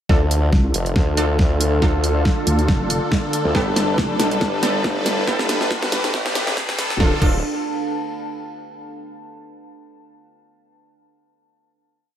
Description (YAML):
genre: heavy wobble dubstep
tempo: 139 BPM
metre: 4/4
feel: swing 55% on 16ths, half-time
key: D dorian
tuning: A4 = 443 Hz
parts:
  - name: supersaw chords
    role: sustained chords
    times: 0.1-7.2 s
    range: D3 to B4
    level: -24 LUFS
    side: equal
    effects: sidechain pumping, low-pass filter
  - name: orchestra-hit-like synth stab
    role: stabs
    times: 0.1-7.4 s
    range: B3 to A4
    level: -27 LUFS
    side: right 2 dB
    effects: built-in reverb, analog delay
  - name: formant-sweep wobble bass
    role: bass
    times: 0.1-7.4 s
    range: D1 to D2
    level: -21 LUFS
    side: equal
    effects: chorus, overdrive
  - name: dubstep drum kit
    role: drums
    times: 0.1-7.3 s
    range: crash cymbal, hi-hat, snare drum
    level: -24 LUFS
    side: equal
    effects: studio reverb
  - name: electronic kick drum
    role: drums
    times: 0.1-7.3 s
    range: none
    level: -19 LUFS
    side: equal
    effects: studio reverb
  - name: riser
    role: sound effects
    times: 2.4-7.0 s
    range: none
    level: -32 LUFS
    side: equal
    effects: none
  - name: deep dark ambient pad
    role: texture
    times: 1.6-8.7 s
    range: D4 to A5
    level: -28 LUFS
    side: equal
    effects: chorus, built-in reverb, sidechain pumping
  - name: vowel-sweep wobble bass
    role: bass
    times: 0.5-7.0 s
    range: F1 to G2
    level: -22 LUFS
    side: equal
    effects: chorus, overdrive
room: moderate plate reverb, RT60 1.1 s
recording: dreamy mix soaked in reverb, high-pass filter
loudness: -17 LUFS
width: side -10 dB against mid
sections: 0.1-7.0 build; 7.0-8.7 final chord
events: build-up 0.1-7.0; drum fill 0.1-7.0; filter sweep on supersaw synth 0.1-7.0; filter sweep 0.1-7.0; riser 2.4-7.0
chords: 0.1 Dm; 3.5 Gadd9; 7.0 Dm